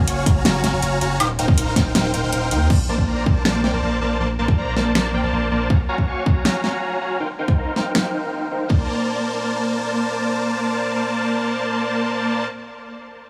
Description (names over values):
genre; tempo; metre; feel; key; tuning
future bass; 160 BPM; 4/4; half-time; Bb major; A4 = 439 Hz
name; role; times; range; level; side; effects
dense compressed supersaw; riff; 0.0-12.5 s; Bb3 to Db6; -24 LUFS; equal; sidechain pumping, low-pass filter, tape echo
saturated sub bass; bass; 0.0-5.7 s; Eb1 to Eb2; -26 LUFS; equal; sidechain pumping
pop drum kit; drums; 0.1-8.0 s; crash cymbal, finger snaps, hi-hat, snare drum, woodblock; -24 LUFS; equal; overdrive
electronic kick drum; drums; 0.3-8.8 s; none; -20 LUFS; equal; overdrive
room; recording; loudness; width
light reverb, digital ambience; none; -20 LUFS; mono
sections
0.0-2.7 A section; 2.7-8.7 B section; 8.7-11.7 C section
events
drop 0.0-2.7; kick drops out 2.3-2.7; filter sweep on supersaw synth 2.7-8.7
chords
0.0 Gbmaj7; 1.2 Eb69; 2.7 Bbmaj7; 5.7 Gbmaj7; 7.2 Eb69; 8.7 Bbmaj7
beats
0.07 0.45 0.82 | 1.20 1.57 1.95 2.33 | 2.70 3.08 3.45 3.83 | 4.20 4.58 4.95 5.33 | 5.70 6.08 6.45 6.83 | 7.20 7.58 7.95 8.32 | 8.70 9.07 9.45 9.82 | 10.20 10.57 10.95 11.32